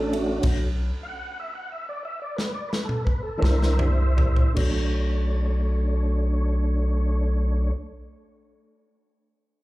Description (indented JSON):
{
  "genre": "slow blues",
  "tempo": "50-66 BPM (dotted quarters)",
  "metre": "12/8",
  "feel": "straight",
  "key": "B minor",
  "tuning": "A4 = 440 Hz",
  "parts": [
    { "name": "mellow tine electric piano", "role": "accompaniment", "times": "0.0-7.7 s", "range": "D4 to E5", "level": "-34 LUFS", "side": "right 4 dB", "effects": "medium stereo tremolo, slapback echo" },
    { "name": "tonewheel organ", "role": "sustained chords", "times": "0.0-7.7 s", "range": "E3 to F#5", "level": "-30 LUFS", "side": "equal", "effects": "slow rotary speaker, overdrive, chorus vibrato" },
    { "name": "rubbery square bass", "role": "bass", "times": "0.0-7.7 s", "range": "A1 to C2", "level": "-22 LUFS", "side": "equal", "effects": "none" },
    { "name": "natural country drum kit", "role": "drums", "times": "0.1-4.8 s", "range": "crash cymbal, kick drum, ride cymbal, snare drum, toms", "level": "-26 LUFS", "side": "equal", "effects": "none" }
  ],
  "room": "small room ambience",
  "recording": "live gig heard through the venue's PA, club reverb",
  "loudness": "-22 LUFS",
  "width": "side -18 dB against mid",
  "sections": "0.0-4.6 A section; 4.6-9.4 B section",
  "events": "slowing down 0.0-4.6; tonewheel organ solo 0.0-4.6; stop 0.4-3.4; drum fill 2.4-4.6",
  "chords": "0.0 Bm9; 3.4 C7; 4.6 Bm9",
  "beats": "| 0.43 1.38 2.36 3.42 | 4.57 5.78 6.98"
}